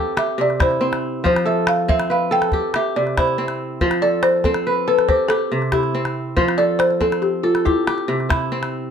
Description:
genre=west african traditional, West African string and xylophone music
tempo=94 BPM (dotted quarters)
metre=12/8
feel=straight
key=F lydian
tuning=A4 = 440 Hz
part: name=balafon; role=melody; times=0.0-8.5 s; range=E4 to G5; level=-19 LUFS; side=equal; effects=plate reverb
part: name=kora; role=arpeggios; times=0.0-8.9 s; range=C3 to C5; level=-20 LUFS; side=equal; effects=none
part: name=calabash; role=percussion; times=0.2-8.7 s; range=none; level=-23 LUFS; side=left 1 dB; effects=none
room=wet studio reverb, RT60 0.6 s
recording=none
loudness=-16 LUFS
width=side -7 dB against mid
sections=0.0-8.9 A section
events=none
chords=0.0 C; 1.2 F; 2.5 C; 3.8 F; 5.1 C; 6.4 F; 7.7 C

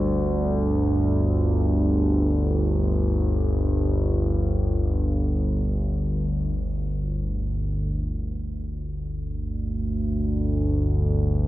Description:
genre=dark ambient drone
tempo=free time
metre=none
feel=none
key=unclear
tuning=A4 = 440 Hz
part: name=analog drone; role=solo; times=0.0-11.5 s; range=G1 to D2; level=-22 LUFS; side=equal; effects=chorus, tape echo
room=moderate huge ambient reverb, RT60 8.9 s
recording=worn, warbling old tape, cassette tape, warbly pitch drift, nothing above 7.8 kHz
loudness=-22 LUFS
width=side -16 dB against mid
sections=0.0-7.9 A section; 7.9-11.5 A section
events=none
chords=0.0 G5

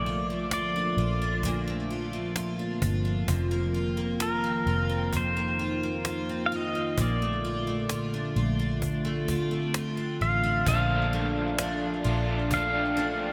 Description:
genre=dream pop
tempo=65 BPM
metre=4/4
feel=straight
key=Bb major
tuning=A4 = 440 Hz
part: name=pedal steel guitar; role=melody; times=0.0-13.3 s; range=Bb4 to F5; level=-33 LUFS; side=equal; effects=digital delay
part: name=warbly tape-like pad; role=sustained chords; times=0.0-13.3 s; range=Bb2 to G5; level=-34 LUFS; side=equal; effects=chorus, built-in reverb
part: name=picked twelve-string acoustic guitar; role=arpeggios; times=0.0-13.3 s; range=F2 to F4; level=-36 LUFS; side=equal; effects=lush chorus, slapback echo, digital delay
part: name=vintage muted fingered electric bass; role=bass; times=0.0-13.3 s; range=F1 to Bb1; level=-33 LUFS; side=equal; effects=none
part: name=cajon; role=drums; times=0.5-13.1 s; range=none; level=-34 LUFS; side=equal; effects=none
part: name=crunchy overdriven guitar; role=accompaniment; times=10.7-13.3 s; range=Bb2 to F4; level=-36 LUFS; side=equal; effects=tremolo, lush chorus, slapback echo
room=wet lush hall reverb, RT60 2.6 s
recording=big arena sound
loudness=-28 LUFS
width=mono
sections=0.0-10.7 A section; 10.7-13.3 B section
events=none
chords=0.0 Bbmaj7; 3.3 F7sus4; 7.0 Bbmaj7

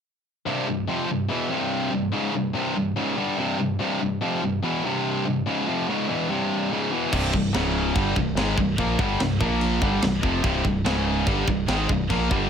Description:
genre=heavy metal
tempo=144 BPM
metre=4/4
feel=straight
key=C phrygian dominant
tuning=A4 = 439 Hz
part: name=high-gain distorted guitar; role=riff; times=0.5-12.5 s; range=C2 to Bb3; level=-26 LUFS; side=right 11 dB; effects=distortion
part: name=tight distorted guitar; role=riff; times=0.5-12.5 s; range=C2 to Bb3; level=-25 LUFS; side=left 8 dB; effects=distortion
part: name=heavy high-gain guitar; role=riff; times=7.1-12.5 s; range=C2 to Bb3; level=-30 LUFS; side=right 1 dB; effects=distortion
part: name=growling picked electric bass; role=bass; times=7.1-12.5 s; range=C1 to Bb1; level=-27 LUFS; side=right 1 dB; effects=overdrive
part: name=tight metal drum kit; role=drums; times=7.1-12.4 s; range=crash cymbal, kick drum, snare drum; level=-27 LUFS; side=right 1 dB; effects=none
room=light reverb, studio ambience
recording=none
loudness=-22 LUFS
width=side -7 dB against mid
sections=0.5-7.1 A section; 7.1-12.5 B section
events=none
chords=0.5 C; 7.1 C5; 7.5 Db5; 8.0 C5; 9.4 Bb5; 9.8 C5; 10.9 Db5; 11.3 C5

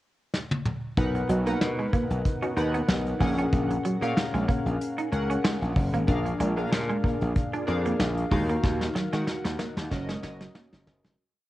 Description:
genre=1980s-style pop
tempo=94 BPM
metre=4/4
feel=swing 55% on 16ths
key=F# major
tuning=A4 = 440 Hz
part: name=soft brush drum kit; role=drums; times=0.3-11.2 s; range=hi-hat, kick drum, snare drum, toms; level=-28 LUFS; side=equal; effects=cassette tape
part: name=chorused retro synth keys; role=accompaniment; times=1.0-11.2 s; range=A#2 to F#5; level=-30 LUFS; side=left 1 dB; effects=cassette tape
part: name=gritty slap bass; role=bass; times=1.0-11.2 s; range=E#1 to D#3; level=-28 LUFS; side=equal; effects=overdrive
part: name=electric guitar at the edge of break-up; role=riff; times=1.2-11.1 s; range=F#3 to D#4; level=-32 LUFS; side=right 3 dB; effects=wide subtle chorus, cassette tape, analog delay
part: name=funky polysynth comp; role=stabs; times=1.3-7.8 s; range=A#3 to A#4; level=-35 LUFS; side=equal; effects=chorus, cassette tape
room=light reverb, small room ambience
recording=home recording on cassette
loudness=-24 LUFS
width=side -16 dB against mid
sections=0.0-1.0 pickup bar; 1.0-11.2 chorus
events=drum fill 0.3-1.0, 8.6-11.2; fade-out 8.6-11.2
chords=0.0 N.C.; 1.0 Bmaj7; 3.2 F#add9/A#; 6.1 A#7; 8.3 D#madd9; 9.9 F#6

